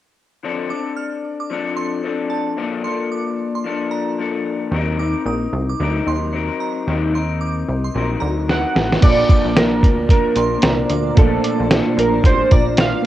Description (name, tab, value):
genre	indie pop, bedroom pop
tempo	112 BPM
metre	4/4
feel	swing 60% on 16ths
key	Bb major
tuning	A4 = 443 Hz
part	electric guitar through a small old amp	accompaniment	0.4-13.1 s	Bb2 to Bb4	-22 LUFS	left 6 dB	wide subtle chorus, vibrato effect
part	glassy synth bell	second line	0.7-12.9 s	A5 to F6	-31 LUFS	right 6 dB	lush chorus, analog delay
part	plucky analog bass	bass	4.7-12.9 s	A1 to Eb2	-21 LUFS	equal	none
part	warbly lo-fi synth keys	melody	8.5-13.1 s	A4 to Gb5	-20 LUFS	right 2 dB	analog chorus, analog delay
part	lo-fi sampler-style drum kit	drums	8.5-12.9 s	crash cymbal, hi-hat, kick drum, snare drum	-14 LUFS	equal	vintage 12-bit sampler grit, cassette tape
part	tine electric piano	accompaniment	9.0-13.1 s	A3 to A5	-23 LUFS	right 8 dB	none
part	granular cloud pad	sustained chords	10.3-13.1 s	Bb2 to D5	-27 LUFS	right 1 dB	built-in reverb
room	light reverb, digital ambience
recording	home recording on cassette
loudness	-16 LUFS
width	side -13 dB against mid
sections	0.4-9.0 A section; 9.0-13.1 B section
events	drum fill 8.5-9.0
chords	0.4 Dm7; 2.6 Bbmaj7; 4.7 Ebm6; 9.0 Bbmaj7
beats	| 0.43 0.97 1.50 2.04 | 2.58 3.12 3.65 4.19 | 4.73 5.27 5.80 6.34 | 6.88 7.42 7.95 8.49 | 9.03 9.56 10.10 10.64 | 11.17 11.71 12.25 12.78